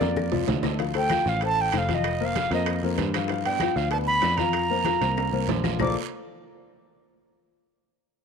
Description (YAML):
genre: Afro-Cuban jazz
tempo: 192 BPM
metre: 4/4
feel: straight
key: Bb major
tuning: A4 = 440 Hz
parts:
  - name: breathy bright concert flute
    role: melody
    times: 0.0-6.0 s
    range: D5 to D6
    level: -26 LUFS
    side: right 3 dB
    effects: slapback echo
  - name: warm baby grand piano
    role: accompaniment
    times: 0.0-6.0 s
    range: F3 to F5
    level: -29 LUFS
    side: left 12 dB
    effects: none
  - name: picked electric bass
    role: bass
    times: 0.0-5.9 s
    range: F1 to G2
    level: -29 LUFS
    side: right 1 dB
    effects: none
  - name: bongos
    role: percussion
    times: 0.0-5.9 s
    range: none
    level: -36 LUFS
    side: left 13 dB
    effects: none
  - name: congas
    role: percussion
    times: 0.0-5.9 s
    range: none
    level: -34 LUFS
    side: equal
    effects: none
  - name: guiro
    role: percussion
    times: 0.0-5.9 s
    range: none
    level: -38 LUFS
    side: right 16 dB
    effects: none
  - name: timbales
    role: percussion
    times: 0.0-5.9 s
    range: none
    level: -33 LUFS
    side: right 16 dB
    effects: none
  - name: claves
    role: percussion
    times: 0.2-5.9 s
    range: none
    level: -39 LUFS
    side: left 12 dB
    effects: none
room: light reverb, studio reverb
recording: 1960s-style stereo with parts hard left and right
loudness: -22 LUFS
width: side -6 dB against mid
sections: 0.8-5.8 A section; 5.8-7.1 B section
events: drum fill 0.0-0.8, 5.2-5.8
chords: 0.0 Bbmaj7; 0.8 Dm7; 2.0 F7sus4; 3.3 G7; 4.5 Fsus4; 5.8 Bbmaj9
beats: 0.17 0.48 | 0.79 1.10 1.42 1.73 | 2.04 2.36 2.67 2.98 | 3.30 3.61 3.92 4.24 | 4.55 4.86 5.17 5.49 | 5.80